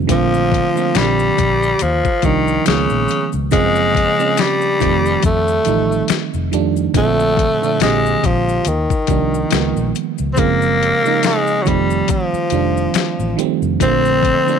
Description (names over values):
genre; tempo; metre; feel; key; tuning
R&B, neo-soul; 70 BPM; 4/4; swing 57% on 16ths; Bb major; A4 = 439 Hz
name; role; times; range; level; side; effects
FM electric piano; accompaniment; 0.0-14.6 s; Bb2 to G4; -19 LUFS; right 12 dB; chorus
vintage muted fingered electric bass; bass; 0.0-14.3 s; F1 to F2; -21 LUFS; left 2 dB; transformer saturation
raspy tenor saxophone; melody; 0.1-14.6 s; Db3 to C4; -16 LUFS; left 2 dB; slapback echo
boom bap sampler-style drum kit; drums; 0.1-14.5 s; hi-hat, kick drum, snare drum; -19 LUFS; left 6 dB; none
maracas and finger snaps; percussion; 0.1-14.6 s; none; -32 LUFS; left 18 dB; none
room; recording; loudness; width
little or no reverb; 1960s-style stereo with parts hard left and right; -14 LUFS; side -7 dB against mid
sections
0.0-14.6 A section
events
none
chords
0.1 Bbmaj9; 0.9 Bb69; 1.8 Ebmaj7; 2.7 Db13; 3.5 Gbmaj9#11; 4.8 F9; 6.9 Bbmaj9; 7.8 Bb13; 8.7 Ebmaj7; 9.5 Db13; 10.4 Gbmaj9#11; 11.7 F9; 13.8 Bbmaj9